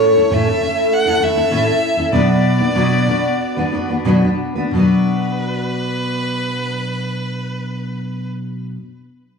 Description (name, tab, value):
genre	pop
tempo	86-102 BPM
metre	4/4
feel	straight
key	B minor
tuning	A4 = 441 Hz
part	rich violin	melody	0.0-8.3 s	B4 to F#5	-21 LUFS	right 1 dB	slapback echo, ping-pong delay
part	fingerpicked steel-string acoustic guitar	accompaniment	0.0-8.8 s	A2 to B4	-16 LUFS	equal	double-tracked left and right, slapback echo
room	moderate plate reverb, RT60 1.6 s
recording	live gig heard through the venue's PA, club reverb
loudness	-15 LUFS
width	side -5 dB against mid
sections	0.0-4.7 A section; 4.7-7.5 B section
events	slowing down 0.0-4.7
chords	0.0 A; 2.1 Bm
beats	0.32 0.91 1.51 | 2.13 2.75 3.40 4.06 | 4.74 5.43 6.13 6.82